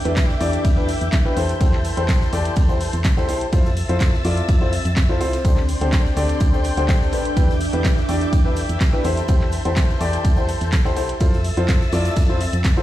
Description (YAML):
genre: piano house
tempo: 125 BPM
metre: 4/4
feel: straight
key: unclear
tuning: A4 = 442 Hz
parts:
  - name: muted studio string section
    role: sustained chords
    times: 0.0-12.8 s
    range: D5 to A6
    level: -31 LUFS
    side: left 4 dB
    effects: sidechain pumping
  - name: granular cloud pad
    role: texture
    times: 0.0-12.8 s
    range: C4 to C6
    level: -30 LUFS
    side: right 2 dB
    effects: built-in reverb, sidechain pumping
  - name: clear baby grand piano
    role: riff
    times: 0.1-12.8 s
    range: D4 to D5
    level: -24 LUFS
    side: left 2 dB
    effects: sidechain pumping, ping-pong delay
  - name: solid FM bass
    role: bass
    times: 0.1-12.8 s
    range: A1 to F2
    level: -23 LUFS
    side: equal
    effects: sidechain pumping
  - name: punchy analog drum machine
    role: drums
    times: 0.1-12.7 s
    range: handclaps, hi-hat, ride cymbal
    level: -31 LUFS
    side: right 1 dB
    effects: none
  - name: electronic kick drum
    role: drums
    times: 0.2-12.7 s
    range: none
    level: -18 LUFS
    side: equal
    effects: none
  - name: gated 80s drum kit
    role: drums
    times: 0.2-12.8 s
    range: hi-hat, snare drum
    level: -37 LUFS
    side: left 1 dB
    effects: sidechain pumping on hats, high-pass filter on hats, high-pass filter on snare, high-pass filter on room
room: small room ambience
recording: played on a big sound system in a bare room, stone room reverb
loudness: -16 LUFS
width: side -14 dB against mid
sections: 0.0-12.8 A section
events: none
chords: 0.0 Em7; 1.4 Am7/E; 3.5 Fmaj7; 5.4 D7sus4; 7.4 Em7; 9.0 Am7/E; 11.2 Fmaj7